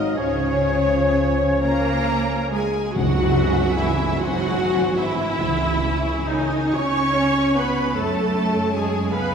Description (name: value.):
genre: classical, slow romantic movement for symphony orchestra.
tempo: 40-52 BPM (dotted quarters).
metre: 6/8.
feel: rubato.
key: C# minor.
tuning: A4 = 440 Hz.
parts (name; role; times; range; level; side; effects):
rich studio violin section; melody; 0.0-9.3 s; Ab4 to C#6; -31 LUFS; left 3 dB; none.
mellow hollow silver concert flute; second line; 0.0-2.5 s; Db5 to Eb5; -29 LUFS; left 2 dB; none.
rich studio violin section; second line; 0.0-9.3 s; B#4 to A5; -31 LUFS; left 3 dB; none.
warm clarinet; second line; 0.0-2.5 s; Db5 to Eb5; -29 LUFS; left 1 dB; none.
warm oboe; second line; 0.0-2.6 s; F5 to Ab5; -32 LUFS; right 1 dB; none.
mellow bassoon; accompaniment; 0.0-2.6 s; F3 to Gb3; -29 LUFS; right 2 dB; none.
rich studio viola section; accompaniment; 0.0-9.3 s; D#4 to Eb5; -23 LUFS; equal; none.
mellow French horn section; sustained chords; 0.0-2.5 s; Db4 to Eb4; -24 LUFS; left 4 dB; none.
bright studio cello section; bass; 0.0-9.3 s; Ab2 to C#4; -26 LUFS; right 2 dB; none.
dark studio double bass section; bass; 0.0-9.3 s; Ab1 to F#2; -25 LUFS; right 2 dB; none.
cymbal swell and tam-tam; percussion; 0.2-6.2 s; none; -32 LUFS; left 1 dB; none.
timpani; percussion; 3.0-6.7 s; C#3; -28 LUFS; equal; none.
room: wet concert hall reverb, RT60 2.4 s.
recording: heard from further back in the room.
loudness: -18 LUFS.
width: side -7 dB against mid.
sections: 0.0-3.0 A section; 3.0-9.3 B section.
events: band accent 3.0-3.8.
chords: 0.2 Db; 3.0 C#m; 4.2 G#7; 5.4 C#m; 7.9 F#m.